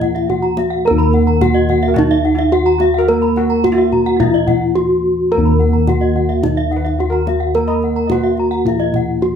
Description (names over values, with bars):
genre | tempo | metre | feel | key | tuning
Balinese gamelan | 108 BPM | 4/4 | straight | unclear | A4 = 440 Hz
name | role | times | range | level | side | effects
gamelan-type bronze metallophone | melody | 0.0-9.4 s | Eb4 to Bb4 | -16 LUFS | left 1 dB | none
steel pan | second line | 0.0-9.4 s | Eb4 to Eb5 | -26 LUFS | left 1 dB | none
gamelan-type bronze metallophone | accompaniment | 0.0-9.4 s | Eb3 to Bb3 | -21 LUFS | right 2 dB | none
gamelan-type bronze metallophone | arpeggios | 0.0-9.1 s | Eb5 to Bb5 | -25 LUFS | left 4 dB | none
gamelan-type bossed gongs | bass | 0.0-9.4 s | Eb2 to Bb4 | -18 LUFS | left 1 dB | none
kendang | percussion | 0.0-9.1 s | none | -24 LUFS | equal | none
gamelan-type bronze metallophone | arpeggios | 0.1-8.9 s | Eb5 to Cb6 | -25 LUFS | right 6 dB | none
room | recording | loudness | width
moderate large studio reverb, RT60 1.1 s | band playing live in one room | -12 LUFS | side -8 dB against mid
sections
0.0-9.4 A section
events
none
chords
none